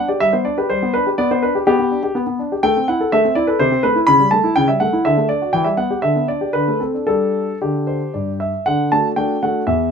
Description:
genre	classical-period piano sonatina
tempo	112-126 BPM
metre	3/4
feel	rubato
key	G major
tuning	A4 = 439 Hz
part	warm grand piano	solo	0.0-9.9 s	E2 to B5	-15 LUFS	equal	none
room	moderate studio ambience, RT60 0.5 s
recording	minimal, uncompressed stereo recording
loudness	-15 LUFS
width	side -6 dB against mid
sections	0.0-8.7 A section; 8.7-9.9 B section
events	none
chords	0.0 G; 1.2 G/B; 2.6 Am; 3.6 Am/C; 4.1 A7/C#; 5.0 D; 5.5 Em; 6.0 G/D; 6.5 D5; 7.1 G5; 8.7 D

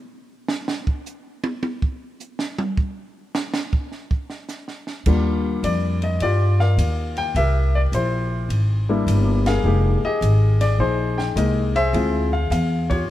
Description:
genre	jazz piano trio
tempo	105 BPM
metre	4/4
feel	swing 68% on 8ths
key	Eb major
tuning	A4 = 444 Hz
part	compact cocktail drum kit	drums	0.5-13.0 s	crash cymbal, hi-hat, kick drum, ride cymbal, snare drum, toms	-27 LUFS	right 2 dB	none
part	warm grand piano	melody	5.1-13.1 s	G3 to G5	-22 LUFS	left 3 dB	none
part	upright bass	bass	5.1-13.1 s	F1 to G2	-19 LUFS	equal	none
room	light reverb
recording	heard from further back in the room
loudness	-19 LUFS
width	side -14 dB against mid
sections	0.0-5.1 A section; 5.1-13.1 B section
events	drum solo 0.0-5.1; band accent 9.4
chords	0.0 N.C.; 5.1 Ebmaj9; 7.4 C7; 9.6 Fm11; 11.9 Dm7b5

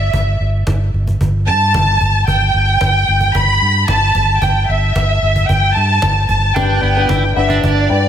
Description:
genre	piano-driven pop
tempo	112 BPM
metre	4/4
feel	straight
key	G major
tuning	A4 = 440 Hz
part	dark symphonic violin section	melody	0.0-8.1 s	D5 to B5	-15 LUFS	equal	slapback echo
part	fingered electric bass	bass	0.0-8.1 s	G1 to G2	-15 LUFS	equal	none
part	cajon	drums	0.1-8.0 s	none	-22 LUFS	right 1 dB	none
part	warm baby grand piano	accompaniment	6.6-8.1 s	G2 to G5	-18 LUFS	left 6 dB	slapback echo
part	crunchy overdriven guitar	riff	6.6-7.9 s	B3 to E4	-20 LUFS	right 7 dB	tremolo, slapback echo
room	light reverb, small room ambience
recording	none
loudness	-12 LUFS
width	side -9 dB against mid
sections	0.0-8.1 A section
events	none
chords	0.0 G5; 6.6 G

